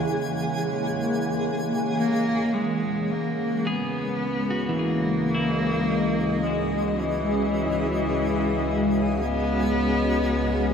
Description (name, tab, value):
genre	ambient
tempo	54 BPM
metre	4/4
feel	straight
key	C# dorian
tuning	A4 = 437 Hz
part	granular cloud pad	sustained chords	0.0-10.7 s	E3 to F#5	-26 LUFS	left 1 dB	built-in reverb
part	overtone-sweeping drone	drone	0.0-10.7 s	C#3 to G#3	-31 LUFS	equal	chorus, built-in reverb
part	twinkling granular texture	texture	0.0-10.7 s	G#4 to G#5	-36 LUFS	right 1 dB	built-in reverb
part	rich cello	melody	2.0-10.7 s	E3 to B3	-26 LUFS	left 1 dB	ping-pong delay
part	warm sub bass	bass	2.5-10.7 s	C#2	-33 LUFS	equal	none
part	clean electric guitar	arpeggios	3.7-9.2 s	E3 to G#4	-30 LUFS	right 1 dB	ping-pong delay
room	wet plate reverb, RT60 3.2 s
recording	dreamy mix soaked in reverb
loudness	-22 LUFS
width	side -7 dB against mid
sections	0.0-2.5 A section; 2.5-10.7 B section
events	fade-in on sub bass 2.5-10.7; fade-in on synth texture 2.5-10.7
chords	0.0 Eadd9; 2.5 C#m9